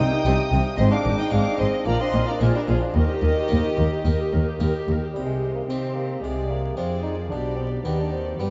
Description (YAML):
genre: classical, baroque-style concerto movement with solo episodes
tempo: 111 BPM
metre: 4/4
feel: straight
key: Eb major, C minor from 5.1 s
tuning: A4 = 440 Hz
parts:
  - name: mellow bassoon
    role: melody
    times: 0.0-8.5 s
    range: Eb3 to Eb4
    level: -30 LUFS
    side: equal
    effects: none
  - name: rich chamber violin section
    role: melody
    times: 0.0-8.5 s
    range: Eb5 to Eb6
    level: -38 LUFS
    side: equal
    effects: none
  - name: rich chamber violin section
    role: second line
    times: 0.0-8.5 s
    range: G4 to G5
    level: -35 LUFS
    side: equal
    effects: none
  - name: harpsichord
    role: accompaniment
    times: 0.0-8.5 s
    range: Eb2 to Ab4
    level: -33 LUFS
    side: equal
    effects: none
  - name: rich chamber viola section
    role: accompaniment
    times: 0.0-8.5 s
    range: C4 to Bb4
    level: -33 LUFS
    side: equal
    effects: none
  - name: rich chamber double bass section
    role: bass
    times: 0.0-8.5 s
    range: Ab1 to C3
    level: -28 LUFS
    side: equal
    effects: none
  - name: warm chamber cello section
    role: bass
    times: 0.0-8.5 s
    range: Eb2 to C4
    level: -29 LUFS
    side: equal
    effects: none
room: wet cathedral reverb, RT60 5.4 s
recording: in a vast, echoing space, vinyl crackle, nothing above 7.5 kHz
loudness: -23 LUFS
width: mono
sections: 0.0-5.1 A section; 5.1-8.5 B section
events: none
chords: 0.0 Cm; 0.8 Ab; 1.9 Bb; 3.0 Eb; 5.1 Cm; 6.2 Dm7b5/C; 7.3 G/B